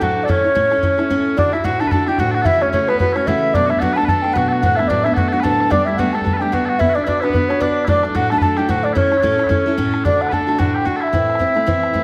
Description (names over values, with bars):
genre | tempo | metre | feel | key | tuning
celtic folk, Celtic reel | 221 BPM | 4/4 | swing 58% on 8ths | A mixolydian | A4 = 440 Hz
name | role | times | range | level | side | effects
mellow baroque flute | melody | 0.0-12.0 s | B4 to A5 | -20 LUFS | equal | none
mellow small bagpipes | second line | 0.0-12.0 s | B3 to B4 | -26 LUFS | equal | none
picked steel-string acoustic guitar | accompaniment | 0.0-12.0 s | D2 to B4 | -22 LUFS | equal | none
bodhran | percussion | 0.0-12.0 s | none | -25 LUFS | equal | none
room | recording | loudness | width
moderate recital hall reverb, RT60 1.3 s | none | -17 LUFS | mono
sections
0.0-1.4 A section; 1.4-10.0 A section; 10.0-12.0 B section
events
none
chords
0.3 A; 1.4 Dadd9; 2.5 A6/C#; 3.5 Bm7; 4.6 D6; 5.7 Gadd9; 6.8 Bm; 7.9 D; 9.0 A; 10.0 D; 11.1 Am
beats
0.01 | 0.28 0.56 0.83 1.10 | 1.37 1.64 1.92 2.19 | 2.46 2.73 3.00 3.27 | 3.54 3.82 4.09 4.36 | 4.63 4.90 5.17 5.44 | 5.71 5.99 6.26 6.53 | 6.80 7.07 7.34 7.61 | 7.88 8.15 8.42 8.69 | 8.96 9.24 9.51 9.78 | 10.05 10.32 10.59 10.86 | 11.13 11.40 11.67 11.94